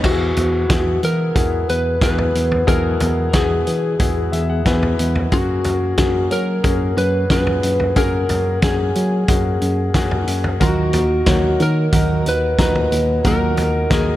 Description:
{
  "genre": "piano-driven pop",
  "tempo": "91 BPM",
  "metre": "4/4",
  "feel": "straight",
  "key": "unclear",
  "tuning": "A4 = 440 Hz",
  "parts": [
    { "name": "clear baby grand piano", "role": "accompaniment", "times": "0.0-14.2 s", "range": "A#2 to B5", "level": "-23 LUFS", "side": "left 5 dB", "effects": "none" },
    { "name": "picked steel-string acoustic guitar", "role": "riff", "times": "0.0, 10.6-14.2 s", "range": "D#3 to A#4", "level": "-24 LUFS", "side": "right 6 dB", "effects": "none" },
    { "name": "tine electric piano", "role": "bass", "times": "0.0-14.2 s", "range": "D#2 to F#3", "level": "-20 LUFS", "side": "equal", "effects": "phaser" },
    { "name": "loose indie drum kit", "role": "drums", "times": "0.0-14.1 s", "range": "crash cymbal, hi-hat, kick drum, snare drum, toms", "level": "-20 LUFS", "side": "equal", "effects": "none" },
    { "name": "lightly driven lead guitar", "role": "melody", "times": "0.1-14.2 s", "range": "F#4 to B4", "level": "-21 LUFS", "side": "equal", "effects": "none" }
  ],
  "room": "little or no reverb",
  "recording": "none",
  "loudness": "-15 LUFS",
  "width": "side -14 dB against mid",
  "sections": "0.0-14.2 A section",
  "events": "grand piano fill 4.0-5.3",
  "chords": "0.0 Eadd9; 5.3 F#add9; 10.6 D#m"
}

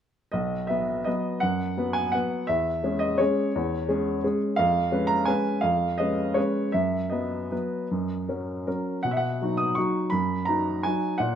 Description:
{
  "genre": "classical, piano waltz",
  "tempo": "149-182 BPM",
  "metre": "3/4",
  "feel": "rubato",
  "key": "B major",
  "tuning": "A4 = 440 Hz",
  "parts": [
    { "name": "clear upright piano", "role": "solo", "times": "0.3-11.4 s", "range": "B1 to D#6", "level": "-23 LUFS", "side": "equal", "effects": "none" }
  ],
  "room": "moderate recital hall reverb, RT60 1.4 s",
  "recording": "close, detailed microphones",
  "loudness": "-24 LUFS",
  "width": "side -9 dB against mid",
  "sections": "0.3-11.4 A section",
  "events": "none",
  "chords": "0.3 B; 2.5 C#m/E; 4.6 C#7/E#; 6.7 B/F#; 7.9 F#; 9.0 B"
}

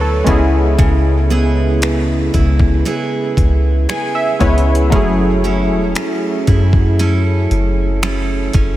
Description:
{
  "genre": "contemporary R&B",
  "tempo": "58 BPM",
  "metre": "4/4",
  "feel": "straight",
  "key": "F# minor",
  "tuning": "A4 = 437 Hz",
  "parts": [
    { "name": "warm analog keys", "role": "accompaniment", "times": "0.0-8.8 s", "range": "F#3 to G#5", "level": "-18 LUFS", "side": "left 1 dB", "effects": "chorus" },
    { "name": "picked steel-string acoustic guitar", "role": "arpeggios", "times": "0.0-8.8 s", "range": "C#3 to A4", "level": "-20 LUFS", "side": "right 4 dB", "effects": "diffuse ambient delay" },
    { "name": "soft 808-style bass", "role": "bass", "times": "0.0-8.8 s", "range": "E1 to F#2", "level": "-15 LUFS", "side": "equal", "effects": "none" },
    { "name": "detuned 8-bit digital drum machine", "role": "drums", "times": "0.3-8.8 s", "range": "finger snaps, hi-hat, kick drum", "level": "-18 LUFS", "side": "equal", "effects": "overdrive" }
  ],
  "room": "light reverb, digital ambience",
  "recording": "none",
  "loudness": "-12 LUFS",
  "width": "side -14 dB against mid",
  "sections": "0.0-8.8 A section",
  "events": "synth keys fill 3.4-4.9",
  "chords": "0.3 C#m7; 4.9 F#m7"
}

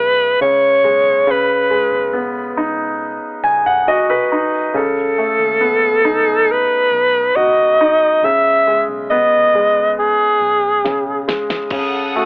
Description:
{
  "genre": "pop ballad",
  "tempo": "69 BPM",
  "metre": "4/4",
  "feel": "straight",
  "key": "unclear",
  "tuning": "A4 = 440 Hz",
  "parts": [
    { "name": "raspy alto saxophone", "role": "melody", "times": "0.0-12.3 s", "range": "F#4 to E5", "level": "-12 LUFS", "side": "equal", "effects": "none" },
    { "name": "clear concert grand piano", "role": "accompaniment", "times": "0.0-12.3 s", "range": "C#3 to G#5", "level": "-18 LUFS", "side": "equal", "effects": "none" },
    { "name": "vintage muted fingered electric bass", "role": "bass", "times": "0.0-12.3 s", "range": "B1 to D#2", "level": "-39 LUFS", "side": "equal", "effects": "none" },
    { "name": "smooth R&B drum kit", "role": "drums", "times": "10.9-11.9 s", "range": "crash cymbal, kick drum, snare drum, toms", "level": "-24 LUFS", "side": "equal", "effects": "none" },
    { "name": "warm studio string section", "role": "sustained chords", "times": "11.7-12.3 s", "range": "A4 to D#6", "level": "-20 LUFS", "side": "equal", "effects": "none" }
  ],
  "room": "light reverb",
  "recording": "worn, warbling old tape, cassette tape, warbly pitch drift, telephone sound",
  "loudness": "-12 LUFS",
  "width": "side -32 dB against mid",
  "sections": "0.0-11.7 A section",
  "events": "grand piano fill 3.0-4.8; drum fill 10.8-11.7",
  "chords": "0.0 C#m7; 1.3 G#m7; 4.8 B7/C#; 8.2 B69; 11.7 D#dim/C#"
}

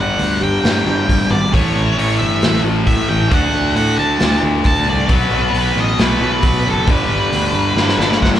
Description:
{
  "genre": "quiet-loud alternative rock",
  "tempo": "135 BPM",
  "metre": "4/4",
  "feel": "straight",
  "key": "unclear",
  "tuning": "A4 = 440 Hz",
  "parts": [
    { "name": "octave-fuzz lead guitar", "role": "melody", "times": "0.0-8.3 s", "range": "A4 to A5", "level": "-20 LUFS", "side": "right 2 dB", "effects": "distortion, slapback echo" },
    { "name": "fingerpicked steel-string acoustic guitar", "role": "arpeggios", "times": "0.0-1.5 s", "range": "G2 to G4", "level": "-23 LUFS", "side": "right 4 dB", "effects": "none" },
    { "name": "distorted electric guitar", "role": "riff", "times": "0.0-8.4 s", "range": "G2 to D4", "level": "-20 LUFS", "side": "left 8 dB", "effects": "distortion" },
    { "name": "fuzz fingered electric bass", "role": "bass", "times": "0.0-8.4 s", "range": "F#1 to B2", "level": "-20 LUFS", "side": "equal", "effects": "overdrive" },
    { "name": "raw garage drum kit", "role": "drums", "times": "0.2-8.4 s", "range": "hi-hat, kick drum, snare drum", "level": "-18 LUFS", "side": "equal", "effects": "none" },
    { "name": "thick fuzz guitar", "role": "riff", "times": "1.5-8.4 s", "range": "G2 to D4", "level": "-22 LUFS", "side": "right 11 dB", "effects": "distortion" }
  ],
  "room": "studio reverb",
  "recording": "live gig heard through the venue's PA, club reverb",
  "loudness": "-13 LUFS",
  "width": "side -11 dB against mid",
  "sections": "0.0-8.4 A section",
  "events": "half time 0.0-8.4; drum fill 7.8-8.4",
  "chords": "0.0 G; 1.5 A; 3.3 D; 5.1 B5; 6.9 G"
}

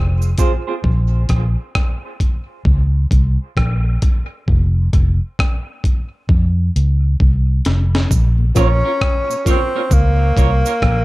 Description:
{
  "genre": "dub reggae",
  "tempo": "66 BPM",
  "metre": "4/4",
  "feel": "swing 63% on 16ths",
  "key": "Bb minor",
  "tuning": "A4 = 440 Hz",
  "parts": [
    { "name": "vintage muted fingered electric bass", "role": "bass", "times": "0.0-11.0 s", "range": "F1 to F2", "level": "-15 LUFS", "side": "equal", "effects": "none" },
    { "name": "cabasa", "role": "percussion", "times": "0.2-0.7, 8.1-10.8 s", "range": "none", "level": "-32 LUFS", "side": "right 10 dB", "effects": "high-pass filter on perc" },
    { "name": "clean electric guitar", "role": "accompaniment", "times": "0.4-0.7, 8.6-10.7 s", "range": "C4 to Db5", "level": "-24 LUFS", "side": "right 5 dB", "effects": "high-pass filter, low-pass filter, dub echo" },
    { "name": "breakbeat sampler-style drum kit", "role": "drums", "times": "0.4-11.0 s", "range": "hi-hat, kick drum, rim click, snare drum", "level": "-16 LUFS", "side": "equal", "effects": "none" },
    { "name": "mellow tonewheel organ", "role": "accompaniment", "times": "8.4-10.7 s", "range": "Bb2 to Db4", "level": "-29 LUFS", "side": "left 4 dB", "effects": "slow rotary speaker, high-pass filter, dub echo" },
    { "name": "clear tenor saxophone", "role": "melody", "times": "8.6-11.0 s", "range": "Bb3 to Db4", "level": "-19 LUFS", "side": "equal", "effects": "dub echo" }
  ],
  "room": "digital ambience",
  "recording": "dark, warm production",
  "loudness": "-14 LUFS",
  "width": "side -19 dB against mid",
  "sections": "0.0-8.1 A section; 8.1-11.0 B section",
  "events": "part muted 0.8-8.1; drum fill 6.3-8.1",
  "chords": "0.0 Fm; 0.8 Bbm; 4.5 F5; 8.1 Bbm"
}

